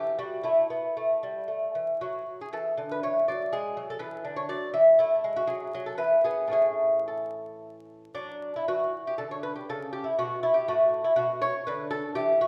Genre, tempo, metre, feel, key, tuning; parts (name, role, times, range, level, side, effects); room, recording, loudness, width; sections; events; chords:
classical, baroque-style dance for lute; 108-126 BPM; 3/4; rubato; A major, D major from 8.2 s; A4 = 440 Hz
lute; solo; 0.0-12.5 s; A2 to E5; -27 LUFS; equal
wet recital hall reverb, RT60 1.6 s; recorded in a church or concert hall, vinyl crackle; -27 LUFS; mono
0.0-8.2 A section; 8.2-12.5 A section
0.4 A5; 2.0 D; 5.0 A5; 5.5 N.C.; 6.0 E; 6.5 A; 8.2 D; 9.7 A; 11.2 Bm